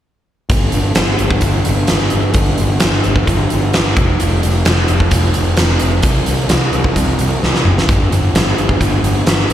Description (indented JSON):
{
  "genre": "hard rock",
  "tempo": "130 BPM",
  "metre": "4/4",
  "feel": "straight",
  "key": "unclear",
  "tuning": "A4 = 440 Hz",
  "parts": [
    { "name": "fuzz picked electric bass", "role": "bass", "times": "0.5-9.5 s", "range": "F1 to C2", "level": "-15 LUFS", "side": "equal", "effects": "overdrive" },
    { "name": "huge arena drum kit", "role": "drums", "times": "0.5-9.5 s", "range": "hi-hat, kick drum, snare drum, toms", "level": "-14 LUFS", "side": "equal", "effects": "none" }
  ],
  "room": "little or no reverb",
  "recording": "live gig heard through the venue's PA, recital hall reverb",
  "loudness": "-12 LUFS",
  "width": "side -11 dB against mid",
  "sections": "0.5-9.5 A section",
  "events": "drum fill 7.4-7.9",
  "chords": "none",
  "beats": "| 0.51 0.97 1.44 1.90 | 2.36 2.82 3.28 3.75 | 4.21 4.67 5.13 5.59 | 6.05 6.51 6.97 7.43 | 7.89 8.35 8.81 9.27"
}